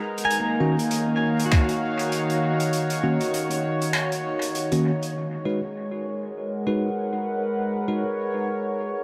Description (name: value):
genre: ambient dub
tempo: 99 BPM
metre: 4/4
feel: swing 57% on 16ths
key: G# dorian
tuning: A4 = 440 Hz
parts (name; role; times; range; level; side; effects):
- warbly tape-like pad; sustained chords; 0.0-9.0 s; D#3 to F#5; -28 LUFS; equal; chorus, built-in reverb
- pedal steel guitar; arpeggios; 0.0-3.6 s; A#3 to A#5; -29 LUFS; equal; tape echo
- soft-mallet drum kit; drums; 0.2-5.1 s; finger snaps, hi-hat; -33 LUFS; equal; dub echo
- bell-like tine electric piano; stabs; 0.6-8.0 s; D#3 to B4; -30 LUFS; equal; dub echo
- electronic kick drum; drums; 1.5-1.7 s; none; -20 LUFS; equal; overdrive
- bubbling stepped-filter texture; texture; 5.4-9.0 s; C#5; -37 LUFS; equal; chorus, built-in reverb
room: moderate huge ambient reverb, RT60 4.3 s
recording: none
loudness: -25 LUFS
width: mono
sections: 0.0-5.2 A section; 5.2-9.0 B section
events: kick drops out 3.9-5.2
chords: 0.3 D#m7; 5.2 G#m7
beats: | 0.30 0.91 1.52 2.12 | 2.73 3.33 3.94 4.55 | 5.15 5.76 6.37 6.97 | 7.58 8.18 8.79